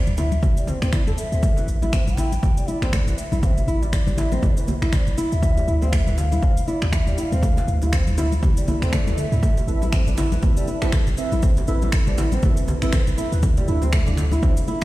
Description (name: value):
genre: afro house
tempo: 120 BPM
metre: 4/4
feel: swing 58% on 16ths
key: A minor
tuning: A4 = 438 Hz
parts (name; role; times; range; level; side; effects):
- bansuri; melody; 0.0-9.8 s; D5 to G5; -32 LUFS; left 2 dB; digital delay
- warm 808-style bass; bass; 0.1-14.8 s; E1 to D2; -22 LUFS; equal; tube saturation, sidechain pumping
- afro-pop drum kit; drums; 0.1-14.8 s; cabasa, finger snaps, toms; -31 LUFS; equal; studio ambience
- congas; percussion; 0.1-14.8 s; none; -30 LUFS; left 3 dB; none
- flamenco guitar; arpeggios; 0.2-14.8 s; E3 to A4; -28 LUFS; equal; sidechain pumping, digital delay
- djembe; percussion; 0.2-14.8 s; none; -31 LUFS; right 1 dB; none
- electronic kick drum; drums; 0.4-14.5 s; none; -20 LUFS; equal; overdrive, studio ambience
- swell; sound effects; 8.6-9.4 s; none; -35 LUFS; left 2 dB; none
- deep mellow chord stab; stabs; 9.7-14.8 s; C4 to E5; -29 LUFS; right 3 dB; chorus, phaser, sidechain pumping, digital delay
room: little or no reverb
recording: played on a big sound system in a bare room, stone room reverb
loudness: -18 LUFS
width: side -17 dB against mid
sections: 0.0-14.8 A section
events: swell 8.6-9.4; drum fill 8.9-9.4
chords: 0.0 Dsus2; 1.4 A5; 5.4 Dmadd9; 9.4 Amadd9; 13.4 Dmadd9